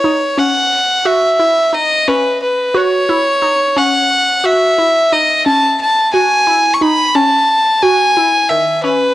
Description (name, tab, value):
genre	progressive instrumental, progressive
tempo	177 BPM (eighths)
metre	5/8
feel	straight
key	C# minor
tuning	A4 = 440 Hz
part	clear violin	melody	0.0-9.1 s	B4 to C#6	-11 LUFS	equal	analog delay
part	glassy wavetable pluck	arpeggios	0.0-9.1 s	D#3 to F#4	-17 LUFS	equal	chorus, cassette tape
room	moderate studio reverb, RT60 0.6 s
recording	home recording on cassette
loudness	-10 LUFS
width	side -15 dB against mid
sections	0.0-9.1 A section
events	none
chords	0.0 C#madd9; 6.1 F#m9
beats	0.03 0.37 0.71 | 1.05 1.39 1.73 2.07 2.41 | 2.75 3.09 3.42 3.76 4.10 | 4.44 4.78 5.12 5.46 5.79 | 6.13 6.47 6.81 7.15 7.48 | 7.82 8.16 8.50 8.84